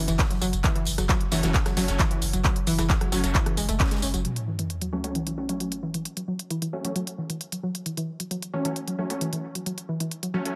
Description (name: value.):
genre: driving peak-time techno.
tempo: 133 BPM.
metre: 4/4.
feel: straight.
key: F# minor.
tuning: A4 = 439 Hz.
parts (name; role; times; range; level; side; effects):
saturated sub bass; bass; 0.0-4.2 s; F#1; -31 LUFS; equal; overdrive, sidechain pumping, low-pass filter.
warbly dusty pluck; riff; 0.1-10.4 s; E3 to C#4; -32 LUFS; equal; chorus, tube saturation, sidechain pumping, dub echo.
huge arena drum kit; drums; 0.1-4.1 s; hi-hat, snare drum; -44 LUFS; equal; none.
techno drum kit; drums; 0.1-10.5 s; handclaps, hi-hat, rim click, tambourine; -32 LUFS; equal; sidechain pumping on hats, sidechain pumping on perc.
electronic kick drum; drums; 0.2-3.9 s; none; -28 LUFS; equal; none.
rave stab; stabs; 1.3-10.6 s; F#3 to C#4; -35 LUFS; equal; chorus, built-in reverb, sidechain pumping, dub echo.
sub drop; sound effects; 4.2-6.1 s; none; -36 LUFS; equal; none.
room: light reverb, digital ambience.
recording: none.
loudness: -27 LUFS.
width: mono.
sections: 0.0-4.2 A section; 4.2-10.6 B section.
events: drop 0.0-4.2; band accent 3.8; impact 4.2-6.1; filter sweep on synth arpeggio sound 4.2-10.6; filter sweep on synth stab 4.2-10.6.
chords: 0.0 F#m.